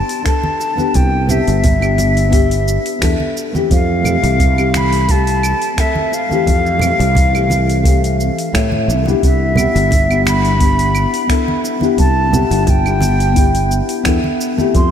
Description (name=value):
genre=sunset chillout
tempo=87 BPM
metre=4/4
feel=swing 54% on 16ths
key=C major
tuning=A4 = 440 Hz
part: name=baroque flute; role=melody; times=0.0-14.9 s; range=E5 to C6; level=-19 LUFS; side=equal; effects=analog delay
part: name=nylon-string guitar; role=accompaniment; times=0.0-14.9 s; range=E3 to A4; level=-18 LUFS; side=left 4 dB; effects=auto-pan, diffuse ambient delay
part: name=deep house drum kit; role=drums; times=0.1-14.9 s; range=cabasa, claves, finger snaps, hi-hat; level=-25 LUFS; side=right 2 dB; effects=overdrive
part: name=electronic kick drum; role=drums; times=0.3-14.9 s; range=none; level=-15 LUFS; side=right 1 dB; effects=none
part: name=congas and bongos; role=percussion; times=0.4-14.7 s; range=none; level=-24 LUFS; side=right 3 dB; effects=none
part: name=sustaining fretless electric bass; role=bass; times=1.0-14.9 s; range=G1 to A2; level=-16 LUFS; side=right 1 dB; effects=lush chorus
room=moderate lush hall reverb, RT60 2.9 s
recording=dreamy mix soaked in reverb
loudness=-12 LUFS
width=side -8 dB against mid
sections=0.0-14.9 A section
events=none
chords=0.0 Cmaj9; 3.7 Fmaj9; 9.2 Cmaj9